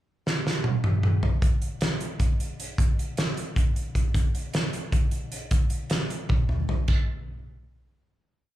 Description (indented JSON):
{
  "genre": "rock",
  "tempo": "307 BPM (eighths)",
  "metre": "7/8",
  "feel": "straight",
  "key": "none",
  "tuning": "none",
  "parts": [
    { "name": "loose indie drum kit", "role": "drums", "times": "0.3-7.0 s", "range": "crash cymbal, hi-hat, kick drum, snare drum, toms", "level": "-24 LUFS", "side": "equal", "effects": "none" }
  ],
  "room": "light reverb",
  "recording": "live gig heard through the venue's PA, club reverb",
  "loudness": "-23 LUFS",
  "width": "side -14 dB against mid",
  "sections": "0.1-1.4 pickup bar; 1.4-6.9 A section; 6.9-8.3 final hit",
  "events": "drum fill 0.3-1.4, 6.3-6.9",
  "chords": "none",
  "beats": "| 0.07 0.26 0.46 0.65 0.84 1.03 1.23 | 1.42 1.61 1.81 2.00 2.20 2.39 2.58 | 2.78 2.97 3.17 3.36 3.56 3.75 3.95 | 4.14 4.34 4.53 4.73 4.92 5.12 5.32 | 5.51 5.71 5.91 6.10 6.30 6.50 6.69 | 6.89"
}